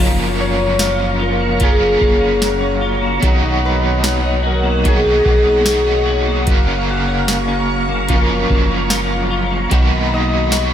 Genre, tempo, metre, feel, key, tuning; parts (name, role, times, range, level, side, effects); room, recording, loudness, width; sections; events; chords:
dream pop; 74 BPM; 4/4; straight; A4 = 445 Hz
overdriven electric guitar; accompaniment; 0.0-10.7 s; F#2 to A#4; -21 LUFS; right 2 dB; tremolo, wide subtle chorus
ensemble organ-string; sustained chords; 0.0-10.7 s; C#5 to C#6; -22 LUFS; equal; phaser, ensemble chorus
clean electric guitar; arpeggios; 0.0-10.7 s; D#3 to F#4; -23 LUFS; left 4 dB; ensemble chorus, digital delay
chorused synth bass; bass; 0.0-10.7 s; F#1 to B1; -20 LUFS; equal
concert harp; melody; 0.4-10.7 s; F#4 to D#5; -19 LUFS; left 2 dB; digital delay
booming analog drum machine; drums; 0.8-10.7 s; hi-hat, kick drum, snare drum; -16 LUFS; equal
moderate concert hall reverb, RT60 2.3 s; -13 LUFS; side -10 dB against mid
0.0-10.7 A section
0.0 F#maj7; 3.2 Bmaj7; 6.5 F#maj7; 9.7 Bmaj7